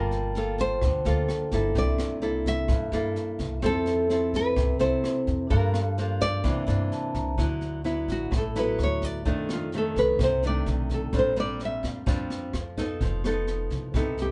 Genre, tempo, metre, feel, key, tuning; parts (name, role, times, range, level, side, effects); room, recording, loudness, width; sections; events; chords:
bossa nova; 128 BPM; 4/4; straight; A4 = 440 Hz
nylon-string guitar; melody; 0.0-14.3 s; F4 to F5; -30 LUFS; equal
nylon-string guitar; accompaniment; 0.0-14.3 s; F2 to A4; -32 LUFS; equal
vibraphone with medium mallets; accompaniment; 0.0-7.4 s; C4 to Bb5; -38 LUFS; equal
upright bass; bass; 0.0-14.3 s; F1 to G2; -32 LUFS; equal
jazz brush drum kit; drums; 0.1-14.2 s; kick drum, rim click, snare drum; -34 LUFS; equal
moderate small room reverb, RT60 0.5 s; band playing live in one room, nothing above 10.5 kHz; -26 LUFS; mono
0.0-7.4 A section; 7.4-14.3 B section
vibraphone fill 6.7-7.4; nylon-string guitar solo 7.4-14.3
0.0 Gm9; 1.8 C13; 3.6 Fmaj7; 5.5 Gm7; 6.4 C9; 7.4 D69; 9.3 F6; 11.1 Bb69; 13.0 F7#11